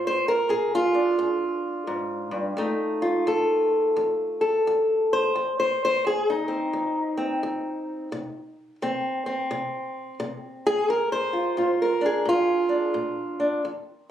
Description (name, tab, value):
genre	acoustic country blues, solo or duo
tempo	87 BPM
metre	4/4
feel	swing 63% on 8ths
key	unclear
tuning	A4 = 440 Hz
part	fingerpicked old ladder-braced acoustic guitar	solo	0.0-14.1 s	F2 to C5	-22 LUFS	equal	none
room	light reverb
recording	recorded on a phone in the room, club reverb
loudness	-22 LUFS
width	side -10 dB against mid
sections	0.0-14.1 A section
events	none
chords	0.0 Bb7; 2.6 F7; 8.1 N.C.; 10.9 Bb7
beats	0.49 1.18 1.88 | 2.58 3.27 3.96 4.65 | 5.35 6.04 6.73 7.42 | 8.11 8.80 9.49 10.18 | 10.87 11.56 12.26 12.95 | 13.64